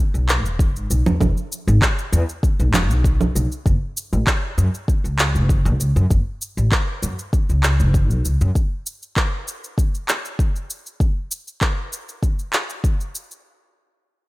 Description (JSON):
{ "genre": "organic downtempo", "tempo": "98 BPM", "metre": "4/4", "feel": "straight", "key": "F# minor", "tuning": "A4 = 440 Hz", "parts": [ { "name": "upright bass", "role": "bass", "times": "0.1-8.5 s", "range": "E1 to F#2", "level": "-18 LUFS", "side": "equal", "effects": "sidechain pumping" }, { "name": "electronic cabasa, handclaps and congas", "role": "drums", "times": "0.1-13.4 s", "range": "none", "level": "-23 LUFS", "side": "right 1 dB", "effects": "small room ambience" }, { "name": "electronic kick drum", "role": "drums", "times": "0.6-13.0 s", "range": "none", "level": "-19 LUFS", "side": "equal", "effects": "small room ambience" } ], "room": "digital ambience", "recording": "none", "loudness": "-17 LUFS", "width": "side -20 dB against mid", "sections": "0.0-3.7 A section; 3.7-13.5 B section", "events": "none", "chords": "none" }